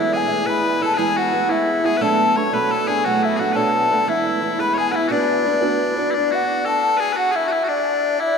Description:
celtic folk, Celtic jig; 116 BPM (dotted quarters); 6/8; straight; B dorian; A4 = 439 Hz
mellow hollow baroque flute; melody; 0.0-8.4 s; D5 to C#6; -20 LUFS; left 2 dB; slapback echo
loud bright bagpipes; second line; 0.0-8.4 s; D4 to C#5; -22 LUFS; left 3 dB
fingerpicked old ladder-braced acoustic guitar; accompaniment; 0.0-6.6 s; B2 to B4; -23 LUFS; right 4 dB
wet cathedral reverb, RT60 5.4 s; in a vast, echoing space; -17 LUFS; side -6 dB against mid
0.0-6.1 A section; 6.1-8.4 A section
0.0 E; 2.0 Bm7; 4.1 E; 5.1 Bm; 6.1 N.C.
0.47 | 0.99 1.50 | 2.02 2.54 | 3.05 3.57 | 4.08 4.60 | 5.11 5.63 | 6.14 6.66 | 7.17 7.69 | 8.20

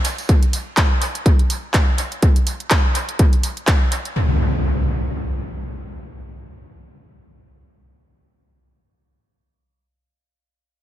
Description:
piano house; 124 BPM; 4/4; swing 56% on 16ths
house drum kit; drums; 0.0-4.1 s; handclaps, hi-hat; -23 LUFS; equal; overdrive, dub echo
electronic kick drum; drums; 0.3-3.8 s; -15 LUFS; equal; overdrive
impact; sound effects; 4.2-9.0 s; -21 LUFS; equal
light reverb, small room ambience; echo-heavy mix; -16 LUFS; side -13 dB against mid
0.0-4.2 A section; 4.2-8.0 B section
| 0.29 0.77 1.26 1.74 | 2.23 2.71 3.19 3.68 | 4.16 4.64 5.13 5.61 | 6.09 6.58 7.06 7.55

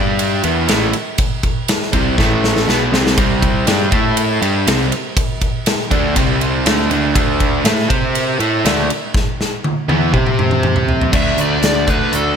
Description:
classic rock; 121 BPM; 4/4; straight; A4 = 439 Hz
overdriven electric guitar; riff; 0.0-12.4 s; A2 to C5; -17 LUFS; right 1 dB; slapback echo
fuzz picked electric bass; bass; 0.0-12.3 s; A1 to C3; -20 LUFS; left 1 dB; overdrive
big rock drum kit; drums; 0.2-12.2 s; crash cymbal, hi-hat, kick drum, ride cymbal, snare drum, toms; -17 LUFS; equal
nasal lead guitar with a parked wah; melody; 11.2-12.4 s; A4 to E5; -19 LUFS; left 2 dB; overdrive, slapback echo
moderate lush hall reverb, RT60 1.6 s, small room ambience; -13 LUFS; side -7 dB against mid
0.0-11.1 A section; 11.1-12.4 B section
drum fill 2.2-3.2, 9.1-11.1
0.4 A5; 3.2 C5; 3.9 A5; 4.4 C5; 7.2 D5; 7.9 C5; 8.4 D5; 10.1 C5; 11.1 D5
0.19 0.69 | 1.18 1.68 2.18 2.68 | 3.17 3.67 4.17 4.67 | 5.16 5.66 6.16 6.66 | 7.15 7.65 8.15 8.64 | 9.14 9.64 10.14 10.63 | 11.13 11.63 12.13

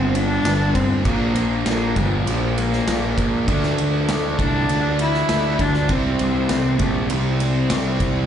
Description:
quiet-loud alternative rock; 99 BPM; 4/4; straight; A4 = 440 Hz
warm cello; melody; 0.0-8.0 s; F3 to E4; -23 LUFS; left 2 dB; slapback echo
fuzz guitar; riff; 0.0-8.3 s; G2 to E4; -26 LUFS; right 10 dB; distortion, slapback echo
thick fuzz guitar; riff; 0.0-8.3 s; G2 to D4; -27 LUFS; left 10 dB; distortion, slapback echo
fuzz picked electric bass; bass; 0.0-8.3 s; G1 to D2; -22 LUFS; equal; overdrive
big rock drum kit; drums; 0.1-8.1 s; kick drum, ride cymbal, snare drum; -25 LUFS; equal
studio reverb; live gig heard through the venue's PA, club reverb, nothing above 10.6 kHz; -17 LUFS; side -9 dB against mid
0.0-8.3 A section
0.0 Gm; 1.1 Bb; 3.5 Dm; 5.9 C
0.45 | 1.06 1.66 2.27 2.87 | 3.47 4.08 4.68 5.29 | 5.89 6.49 7.10 7.70

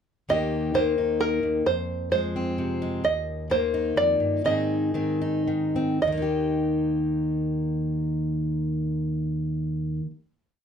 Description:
indie folk with a building arrangement; 105-131 BPM; 3/4; straight; Eb major; A4 = 440 Hz
open-back banjo; melody; 0.3-10.0 s; Bb4 to Eb5; -25 LUFS; right 3 dB
fingerpicked plugged-in steel-string acoustic guitar; accompaniment; 0.3-10.2 s; Eb2 to Ab4; -25 LUFS; left 1 dB
moderate studio ambience, RT60 0.5 s; -23 LUFS; side -7 dB against mid
0.3-6.0 verse; 6.0-9.4 final chord
slowing down 3.0-6.0
0.3 Eb; 1.7 Fm; 3.0 Eb; 4.4 Ab; 6.0 Eb
| 0.28 0.74 1.20 | 1.66 2.12 2.58 | 3.04 3.50 3.96 | 4.45 4.95 5.47 | 6.02 6.59 7.16 | 7.73 8.30 8.87

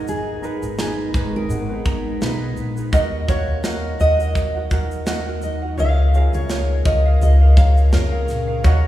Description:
acoustic pop; 84 BPM; 4/4; swing 55% on 16ths; A4 = 441 Hz
fingerpicked steel-string acoustic guitar; melody; 0.0-8.9 s; Ab4 to F5; -25 LUFS; equal
reed electric piano; accompaniment; 0.0-8.9 s; Cb4 to Ab5; -34 LUFS; left 2 dB
tenor ukulele; accompaniment; 0.0-8.9 s; Eb4 to Gb5; -28 LUFS; right 3 dB
ethereal airy pad; sustained chords; 0.0-8.9 s; Db3 to Bb4; -33 LUFS; right 1 dB; ensemble chorus, built-in reverb, phaser
upright bass; bass; 0.0-8.9 s; Ab1 to F2; -18 LUFS; equal
modern studio drum kit; drums; 0.1-8.8 s; kick drum, shaker, snare drum; -22 LUFS; equal
wet church reverb, RT60 2.7 s; recorded in a church or concert hall, small room ambience; -16 LUFS; side -14 dB against mid
0.0-8.9 A section
0.0 Abmadd9; 2.9 Ebm; 5.8 Bbm7/Db
| 0.08 0.79 1.50 2.22 | 2.93 3.65 4.36 5.07 | 5.79 6.50 7.22 7.93 | 8.65

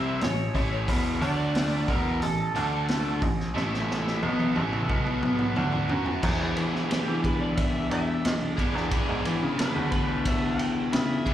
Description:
blues rock power trio and southern rock; 90 BPM; 4/4; straight; E mixolydian; A4 = 440 Hz
overdriven slide guitar; melody; 0.0-11.3 s; G4 to G5; -33 LUFS; right 1 dB; slapback echo
overdriven tonewheel organ; sustained chords; 0.0-11.3 s; G#3 to E5; -40 LUFS; right 3 dB
biting overdriven guitar; riff; 0.0-11.3 s; E2 to G#4; -28 LUFS; left 1 dB; slapback echo
clear baby grand piano; bass; 0.0-11.2 s; E1 to E3; -29 LUFS; equal
vintage drum kit; drums; 0.2-11.3 s; crash cymbal, hi-hat, kick drum, ride cymbal, snare drum, toms; -29 LUFS; equal
studio reverb; live gig heard through the venue's PA, club reverb; -24 LUFS; side -11 dB against mid
0.0-6.2 A section; 6.2-11.3 B section
drum fill 3.6-6.2; electric slide guitar solo 6.2-11.3
0.0 A7#9; 0.9 E5; 1.2 D5; 1.9 E5; 2.2 A5; 2.6 D5; 3.2 A5; 4.2 Bm7; 6.2 E7
0.21 | 0.88 1.55 2.22 2.88 | 3.55 4.22 4.89 5.56 | 6.23 6.90 7.57 8.24 | 8.91 9.58 10.26 10.93

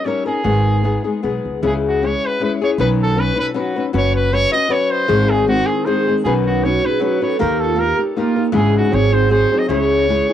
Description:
mexican folk, mariachi; 156 BPM; 3/4; swing 54% on 8ths; C# minor; A4 = 442 Hz
clear trumpet; melody; 0.0-10.3 s; E#4 to D#5; -20 LUFS; right 1 dB; cassette tape, tape echo
flamenco guitar; accompaniment; 0.0-10.3 s; G#2 to B4; -18 LUFS; left 5 dB; cassette tape
upright bass; bass; 0.4-10.2 s; F#1 to D#2; -20 LUFS; right 3 dB; transformer saturation
vibraphone with medium hard mallets; second line; 5.5-10.3 s; A#3 to B#4; -20 LUFS; right 10 dB; cassette tape
moderate booth ambience, RT60 0.2 s; home recording on cassette; -14 LUFS; side -10 dB against mid
0.0-1.6 A section; 1.6-10.3 B section
0.4 G#m; 1.6 C#m; 2.8 Badd9; 3.9 F#sus4; 5.1 G#; 6.3 Badd9; 7.4 D#; 8.6 C#m/G#; 8.9 G#7; 9.7 C#m
0.05 | 0.44 0.83 1.23 | 1.62 2.01 2.40 | 2.79 3.17 3.55 | 3.93 4.32 4.70 | 5.09 5.47 5.86 | 6.25 6.64 7.03 | 7.41 7.79 8.17 | 8.55 8.94 9.32 | 9.70 10.09

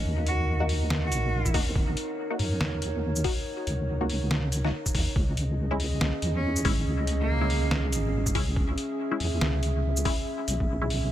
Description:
deep dubstep; 141 BPM; 4/4; swing 59% on 16ths, half-time; Eb phrygian; A4 = 440 Hz
dark analog pad; sustained chords; 0.0-11.1 s; Db4 to Fb5; -33 LUFS; right 1 dB; wide subtle chorus
deep soft wobble bass; bass; 0.0-11.1 s; Ab1 to Gb2; -27 LUFS; equal; chorus, tube saturation
bright cello; melody; 0.3-1.6, 6.3-7.8 s; Bb3 to Gb4; -34 LUFS; right 1 dB; dub echo
trip hop sampler-style drum kit; drums; 0.3-11.0 s; hi-hat, shaker, snare drum; -32 LUFS; equal
filtered dub chord stab; stabs; 0.6-10.9 s; Ab3 to Gb4; -35 LUFS; left 3 dB; phaser, dub echo
electronic kick drum; drums; 1.5-10.7 s; -28 LUFS; equal
little or no reverb; -25 LUFS; side -12 dB against mid
0.0-11.1 A section
0.0 Ebm; 5.2 Dbm
| 0.05 0.48 0.90 1.33 | 1.75 2.18 2.61 3.03 | 3.46 3.88 4.31 4.73 | 5.16 5.58 6.01 6.44 | 6.86 7.29 7.71 8.14 | 8.56 8.99 9.41 9.84 | 10.27 10.69 11.12

